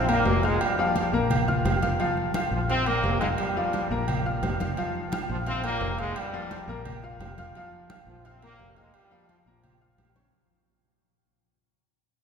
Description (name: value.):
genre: latin, salsa.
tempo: 173 BPM.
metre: 4/4.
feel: straight.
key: unclear.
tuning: A4 = 441 Hz.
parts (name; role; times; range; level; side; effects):
bright trombone section; melody; 0.0-10.1 s; G2 to F4; -30 LUFS; equal; none.
clear grand piano; accompaniment; 0.0-10.3 s; F3 to F6; -29 LUFS; left 2 dB; none.
fingered electric bass; bass; 0.0-10.3 s; F1 to Bb1; -30 LUFS; left 1 dB; none.
agogo bells and timbales; percussion; 0.1-10.3 s; none; -32 LUFS; right 4 dB; none.
congas; percussion; 0.1-10.3 s; none; -33 LUFS; equal; none.
room: wet cathedral reverb, RT60 4.9 s.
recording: recorded in a church or concert hall.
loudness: -24 LUFS.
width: side -6 dB against mid.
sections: 0.0-10.3 A section.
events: fade-out 0.0-10.3.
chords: 0.0 Bb5; 0.6 Fsus2; 1.3 Bb5; 3.4 Fsus2; 4.1 Bb5; 6.2 Fsus2; 6.9 Bb5; 8.9 Fsus2; 9.6 Bbm.